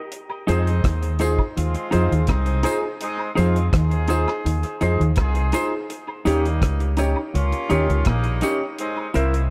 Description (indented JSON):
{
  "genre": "roots reggae",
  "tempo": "83 BPM",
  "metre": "4/4",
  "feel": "straight",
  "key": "F minor",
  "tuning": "A4 = 445 Hz",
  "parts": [
    { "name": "deep reggae drum kit", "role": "drums", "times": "0.1-9.5 s", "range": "hi-hat, kick drum, rim click", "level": "-27 LUFS", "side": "equal", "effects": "tape echo" },
    { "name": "woodblock and tambourine", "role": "percussion", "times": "0.3-9.3 s", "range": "none", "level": "-38 LUFS", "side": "equal", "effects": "none" },
    { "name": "mellow horn section", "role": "second line", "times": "0.5-9.4 s", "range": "G3 to Ab4", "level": "-31 LUFS", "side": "equal", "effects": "tape echo" },
    { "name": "semi-hollow electric guitar", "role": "accompaniment", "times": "0.5-9.3 s", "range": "Eb4 to Db5", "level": "-29 LUFS", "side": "equal", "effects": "spring reverb, tape echo" },
    { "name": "mellow electric guitar", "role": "riff", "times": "0.5-9.4 s", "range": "Bb2 to F3", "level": "-28 LUFS", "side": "equal", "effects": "ensemble chorus" },
    { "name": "dark concert grand piano", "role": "stabs", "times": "0.5-9.3 s", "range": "C4 to Bb4", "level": "-29 LUFS", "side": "equal", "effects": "none" },
    { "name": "deep dub fingered electric bass", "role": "bass", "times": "0.5-9.5 s", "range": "Bb1 to F2", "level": "-23 LUFS", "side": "equal", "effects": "none" }
  ],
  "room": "little or no reverb",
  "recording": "echo-heavy mix",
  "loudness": "-21 LUFS",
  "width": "mono",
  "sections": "0.1-9.5 A section",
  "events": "none",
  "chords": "0.1 Fm7; 5.9 Eb7; 8.8 C7",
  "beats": "| 0.12 0.84 1.56 2.29 | 3.01 3.73 4.45 5.17 | 5.89 6.62 7.34 8.06 | 8.78"
}